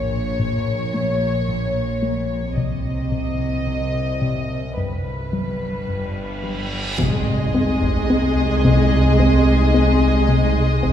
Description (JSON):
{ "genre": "cinematic, suspense film score", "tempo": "55 BPM", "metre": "4/4", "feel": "straight", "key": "unclear", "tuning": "A4 = 440 Hz", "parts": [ { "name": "warm studio violin section", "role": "melody", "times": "0.0-10.9 s", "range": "B4 to Eb5", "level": "-27 LUFS", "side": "left 1 dB", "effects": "none" }, { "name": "plucky analog bass", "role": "riff", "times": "0.0-10.9 s", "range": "G2 to C4", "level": "-23 LUFS", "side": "left 2 dB", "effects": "none" }, { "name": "dark studio cello section", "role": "bass", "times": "0.0-10.9 s", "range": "G2 to C3", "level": "-25 LUFS", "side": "right 2 dB", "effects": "none" }, { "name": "warm studio double bass section", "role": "bass", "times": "0.0-10.9 s", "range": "G1 to C2", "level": "-25 LUFS", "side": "right 1 dB", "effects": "none" }, { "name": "analog drone", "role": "drone", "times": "0.0-10.9 s", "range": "G1 to C2", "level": "-26 LUFS", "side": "equal", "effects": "chorus" }, { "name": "reverse cymbal and sub drop", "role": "sound effects", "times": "6.0-10.9 s", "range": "none", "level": "-29 LUFS", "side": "equal", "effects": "none" }, { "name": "warm studio violin section", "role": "second line", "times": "7.0-10.9 s", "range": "Ab4", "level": "-27 LUFS", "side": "left 2 dB", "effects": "none" }, { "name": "rich studio viola section", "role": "accompaniment", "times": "7.0-10.9 s", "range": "Ab3", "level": "-26 LUFS", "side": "equal", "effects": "none" }, { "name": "mellow French horn section", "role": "sustained chords", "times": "7.0-10.9 s", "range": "Ab3 to Eb4", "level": "-26 LUFS", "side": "left 4 dB", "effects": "none" }, { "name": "taiko ensemble", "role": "drums", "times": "7.0-10.9 s", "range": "none", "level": "-27 LUFS", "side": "equal", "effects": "none" }, { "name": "timpani", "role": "percussion", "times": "7.0-8.6 s", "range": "C3", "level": "-29 LUFS", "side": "equal", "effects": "none" }, { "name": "dark studio violin section", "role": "texture", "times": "7.0-10.9 s", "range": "C6 to Eb6", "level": "-31 LUFS", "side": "left 3 dB", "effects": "none" } ], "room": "wet concert hall reverb, RT60 2.0 s", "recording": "heard from further back in the room", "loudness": "-17 LUFS", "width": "side -10 dB against mid", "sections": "0.0-7.0 A section; 7.0-10.9 B section", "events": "reverse cymbal 6.0-7.0; impact 7.0-10.9", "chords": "0.0 Bbm; 2.6 Cm; 4.8 G; 7.0 Ab/C" }